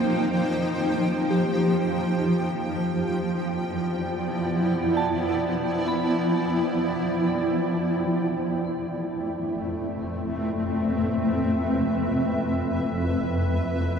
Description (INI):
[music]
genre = ambient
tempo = free time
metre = none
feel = none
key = unclear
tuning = A4 = 441 Hz
[part]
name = granular cloud pad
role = sustained chords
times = 0.0-14.0 s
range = F2 to G5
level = -23 LUFS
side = equal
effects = built-in reverb
[part]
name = soft synth bell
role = arpeggios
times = 0.0-8.8 s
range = G4 to B5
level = -34 LUFS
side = left 1 dB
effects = chorus, phaser, ping-pong delay
[sound]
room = wet huge ambient reverb, RT60 8.2 s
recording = none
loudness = -23 LUFS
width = side -6 dB against mid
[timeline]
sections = 0.0-8.1 A section; 8.1-14.0 B section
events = none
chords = 0.0 Eb6/F; 2.6 Em7/F; 8.1 Amadd9/F; 13.5 E5/F